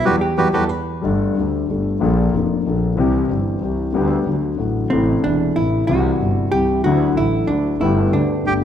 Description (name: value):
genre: tango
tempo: 186 BPM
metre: 3/4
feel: rubato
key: unclear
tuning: A4 = 440 Hz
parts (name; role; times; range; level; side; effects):
- bandoneon; melody; 0.0-0.6, 8.5 s; F#4 to G5; -20 LUFS; right 4 dB; none
- dark concert grand piano; accompaniment; 0.0-8.6 s; E1 to A4; -18 LUFS; left 4 dB; none
- clear double bass; bass; 0.0-8.6 s; E1 to E2; -23 LUFS; right 2 dB; none
- vintage hollow-body jazz guitar; second line; 0.2-1.0, 4.9-8.6 s; C4 to B4; -21 LUFS; right 2 dB; none
room: moderate scoring stage reverb, RT60 1.5 s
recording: none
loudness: -16 LUFS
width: side -9 dB against mid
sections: 0.0-1.0 A section; 1.0-8.6 B section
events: band accent 0.1-1.0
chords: 0.1 Emadd9; 1.0 Gsus2; 2.0 Bbmaj7; 3.0 C; 3.9 G/D; 4.3 D; 4.9 Am; 5.9 C; 6.8 Dadd9; 7.8 Gadd9